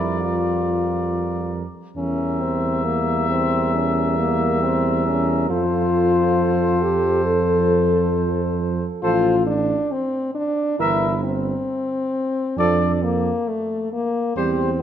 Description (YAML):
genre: classical, brass quintet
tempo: 68 BPM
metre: 4/4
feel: straight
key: F major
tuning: A4 = 442 Hz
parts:
  - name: warm trumpet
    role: melody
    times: 0.0-14.7 s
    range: C5 to E5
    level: -26 LUFS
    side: left 6 dB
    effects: none
  - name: mellow flugelhorn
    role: second line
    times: 0.0-14.7 s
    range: G4 to Bb4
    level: -28 LUFS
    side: right 8 dB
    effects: none
  - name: mellow trombone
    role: accompaniment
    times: 0.0-14.7 s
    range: E3 to G3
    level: -30 LUFS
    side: right 5 dB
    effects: none
  - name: warm French horn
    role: accompaniment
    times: 0.0-14.8 s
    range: A3 to A4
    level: -21 LUFS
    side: left 3 dB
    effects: none
  - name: mellow tuba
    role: bass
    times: 0.0-14.8 s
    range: G1 to F2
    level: -23 LUFS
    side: right 4 dB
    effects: none
room: moderate concert hall reverb, RT60 2.0 s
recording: close, detailed microphones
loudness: -18 LUFS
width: side -9 dB against mid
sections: 0.0-14.8 A section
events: none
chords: 0.0 Gm7/F; 2.0 Edim; 5.5 F; 9.0 F/A; 10.8 Em/G; 12.6 Dm/F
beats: 0.21 1.09 | 1.97 2.85 3.74 4.62 | 5.50 6.39 7.27 8.15 | 9.03 9.92 10.80 11.69 | 12.58 13.48 14.37